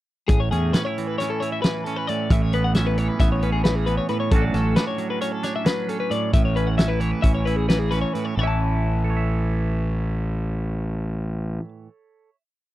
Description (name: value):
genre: math rock and midwest emo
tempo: 267 BPM (eighths)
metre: 9/8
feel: straight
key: A major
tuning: A4 = 440 Hz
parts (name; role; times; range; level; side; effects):
- twangy electric guitar; accompaniment; 0.3-12.4 s; A2 to E5; -27 LUFS; right 6 dB; none
- twelve-string electric guitar; arpeggios; 0.3-11.7 s; G#4 to A5; -27 LUFS; left 6 dB; none
- fuzz fingered electric bass; bass; 0.3-11.6 s; A1 to E2; -23 LUFS; equal; overdrive
- loose indie drum kit; drums; 0.3-8.3 s; hi-hat, kick drum, snare drum; -21 LUFS; equal; none
room: little or no reverb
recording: dry, close 1970s-style studio recording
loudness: -20 LUFS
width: side -15 dB against mid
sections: 0.3-8.4 A section; 8.4-12.4 final chord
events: none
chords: 0.3 Amaj9; 2.3 C#m7/A; 4.3 Dmaj7/A; 6.3 Aadd9; 8.4 A